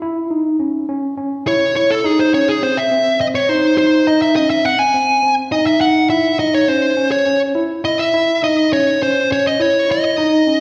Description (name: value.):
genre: progressive instrumental, progressive.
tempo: 207 BPM (eighths).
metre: 7/8.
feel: straight.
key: C# harmonic minor.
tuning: A4 = 440 Hz.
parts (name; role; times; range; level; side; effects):
tine electric piano; arpeggios; 0.0-10.6 s; B#3 to E4; -20 LUFS; equal; none.
fuzz lead guitar; melody; 1.5-10.6 s; G#4 to G#5; -17 LUFS; equal; distortion.
room: wet recital hall reverb, RT60 1.7 s.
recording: recorded in a church or concert hall.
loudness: -16 LUFS.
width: mono.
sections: 0.0-10.6 A section.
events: lead electric guitar solo 0.0-10.6.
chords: 0.0 C#m; 2.0 G#; 6.1 C#m.